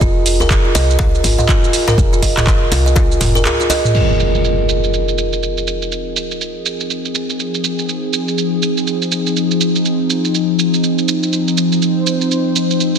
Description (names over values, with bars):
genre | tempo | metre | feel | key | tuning
afro house | 122 BPM | 4/4 | swing 60% on 16ths | F minor | A4 = 438 Hz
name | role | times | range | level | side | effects
kalimba | arpeggios | 0.0-3.8 s | F4 to Eb5 | -19 LUFS | right 2 dB | sidechain pumping, ping-pong delay
woody FM bass | bass | 0.0-3.5 s | F1 to C2 | -17 LUFS | equal | sidechain pumping
afro-pop drum kit | drums | 0.0-13.0 s | crash cymbal, handclaps, hi-hat, shaker, toms | -20 LUFS | right 3 dB | low-pass filter on perc, low-pass filter on hats, low-pass filter on snare, low-pass filter on toms, low-pass filter on cymbals
electronic kick drum | drums | 0.0-3.1 s | none | -15 LUFS | equal | none
djembe | percussion | 0.4-3.8 s | none | -24 LUFS | left 2 dB | none
warm analog pad | sustained chords | 3.9-13.0 s | F3 to C5 | -17 LUFS | left 1 dB | chorus, sidechain pumping
impact | sound effects | 3.9-5.9 s | none | -19 LUFS | equal | none
room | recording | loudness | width
moderate concert hall reverb, RT60 2.3 s | dense, heavily limited modern master | -13 LUFS | side -7 dB against mid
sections
0.0-3.9 A section; 3.9-13.0 B section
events
impact 3.9-5.9; filter sweep on analog synth pad 3.9-13.0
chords
0.0 Fm7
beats
| 0.01 0.50 1.00 1.49 | 1.98 2.47 2.96 3.46 | 3.95 4.44 4.93 5.42 | 5.91 6.41 6.90 7.39 | 7.88 8.37 8.87 9.36 | 9.85 10.34 10.83 11.32 | 11.82 12.31 12.80